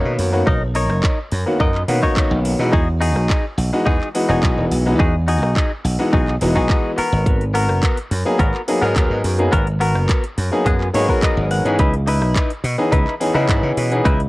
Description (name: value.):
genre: nu-disco, nu disco.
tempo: 106 BPM.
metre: 4/4.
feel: straight.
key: unclear.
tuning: A4 = 437 Hz.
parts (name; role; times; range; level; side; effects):
bright grand piano; accompaniment; 0.0-14.1 s; D#3 to D#5; -21 LUFS; left 1 dB; sidechain pumping, cassette tape.
direct-recorded clean electric guitar; riff; 0.0-14.2 s; B3 to F#5; -22 LUFS; left 1 dB; wide subtle chorus, cassette tape.
slap bass; bass; 0.0-14.3 s; E1 to C#3; -19 LUFS; equal; tube saturation.
house drum kit; drums; 0.2-14.3 s; handclaps, hi-hat, rim click; -28 LUFS; right 1 dB; none.
electronic kick drum; drums; 0.5-14.2 s; none; -18 LUFS; equal; none.
room: light reverb.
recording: home recording on cassette.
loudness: -15 LUFS.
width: side -20 dB against mid.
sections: 0.0-14.3 A section.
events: clean electric guitar fill 10.7-11.8.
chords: 0.0 Bmaj9; 2.7 Emaj9; 7.0 G#m9; 11.8 C#m9.